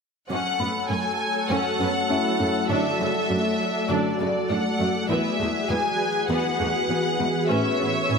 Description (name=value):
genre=cinematic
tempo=100 BPM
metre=4/4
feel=straight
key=F# minor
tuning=A4 = 439 Hz
part: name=warm symphonic violin section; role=melody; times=0.3-8.2 s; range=D5 to G#5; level=-26 LUFS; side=left 2 dB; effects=none
part: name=warm symphonic viola section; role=accompaniment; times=0.3-8.2 s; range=C#3 to C#5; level=-28 LUFS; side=right 1 dB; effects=none
part: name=glassy FM pad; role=sustained chords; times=0.8-8.2 s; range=E3 to D5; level=-26 LUFS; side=left 1 dB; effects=ensemble chorus, built-in reverb
part: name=thumb-piano-like synth pluck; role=arpeggios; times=0.3-8.2 s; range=D3 to C#4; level=-32 LUFS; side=left 2 dB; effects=chorus, ping-pong delay
part: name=warm symphonic cello section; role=bass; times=0.3-8.2 s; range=E2 to A2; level=-30 LUFS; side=right 3 dB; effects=none
part: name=bright concert grand piano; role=texture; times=0.6-8.2 s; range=B3 to B5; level=-35 LUFS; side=right 1 dB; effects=none
room=wet scoring stage reverb, RT60 1.6 s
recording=none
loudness=-21 LUFS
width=side -5 dB against mid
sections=0.3-8.2 A section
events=none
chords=0.3 F#m; 2.7 D/F#; 5.1 Eadd9; 7.5 A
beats=| 0.30 0.90 1.50 2.10 | 2.70 3.30 3.90 4.50 | 5.10 5.70 6.30 6.90 | 7.50 8.10